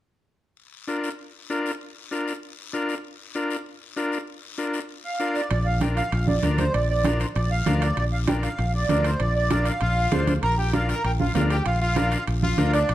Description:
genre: latin, cumbia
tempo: 195 BPM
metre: 4/4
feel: straight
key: Bb major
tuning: A4 = 440 Hz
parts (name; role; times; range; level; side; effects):
- guiro; percussion; 0.6-12.9 s; none; -40 LUFS; left 8 dB; none
- combo organ; accompaniment; 0.9-12.8 s; D4 to C5; -28 LUFS; left 2 dB; none
- accordion; melody; 5.0-12.9 s; C5 to Bb5; -26 LUFS; right 2 dB; light tremolo tuning, plate reverb
- fingered electric bass; bass; 5.5-12.9 s; Bb1 to D2; -24 LUFS; equal; none
- congas; percussion; 5.5-12.9 s; none; -27 LUFS; right 3 dB; none
- timbales; percussion; 5.5-12.9 s; none; -35 LUFS; right 7 dB; none
- brilliant trumpet; second line; 9.8-12.9 s; D4 to Bb4; -31 LUFS; left 4 dB; none
room: moderate large studio reverb, RT60 1.1 s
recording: dark, warm production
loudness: -22 LUFS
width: side -14 dB against mid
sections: 0.6-5.5 A section; 5.5-12.9 B section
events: none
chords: 0.6 Bb

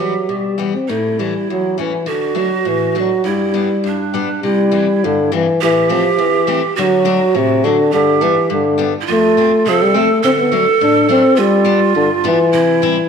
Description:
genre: alpine folk, alpine dance band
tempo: 103 BPM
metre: 2/4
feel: straight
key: G major, C major from 4.4 s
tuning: A4 = 444 Hz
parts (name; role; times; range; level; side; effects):
- mellow euphonium; melody; 0.0-13.1 s; C3 to D4; -14 LUFS; left 1 dB; none
- breathy large pan pipes; second line; 0.0-13.1 s; D4 to A4; -18 LUFS; right 7 dB; none
- picked steel-string acoustic guitar; accompaniment; 0.0-13.0 s; E2 to E4; -22 LUFS; left 9 dB; none
room: wet echo chamber reverb, RT60 1.9 s, small room ambience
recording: 1960s-style stereo with parts hard left and right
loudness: -12 LUFS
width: side -6 dB against mid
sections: 0.0-4.4 A section; 4.4-13.1 B section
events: none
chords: 0.0 Em; 0.9 A; 2.1 D; 3.3 G; 4.4 C; 5.6 Am; 6.8 D; 7.9 G; 9.1 F; 10.2 D; 11.4 G7; 12.5 C

